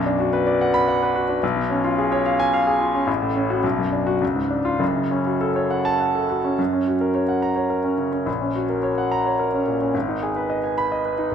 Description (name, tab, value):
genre	classical, virtuoso piano study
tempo	108 BPM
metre	3/4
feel	rubato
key	F# minor, F# major from 6.6 s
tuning	A4 = 440 Hz
part	clear concert grand piano	solo	0.0-11.3 s	F#1 to B5	-19 LUFS	equal	none
room	moderate scoring stage reverb, RT60 1.6 s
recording	none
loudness	-19 LUFS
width	side -8 dB against mid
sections	0.0-6.6 A section; 6.6-11.3 B section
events	none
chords	0.0 Bm; 1.4 C#7/B; 3.1 F#m/A; 3.6 Bm; 4.2 C#; 4.8 F#m; 6.6 F#; 8.3 F#/A#; 9.9 G#m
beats	0.33 0.88 | 1.42 1.98 2.53 | 3.08 3.64 4.21 | 4.81 5.41 6.00 | 6.59 7.15 7.70 | 8.27 8.83 9.39 | 9.95 10.50 11.05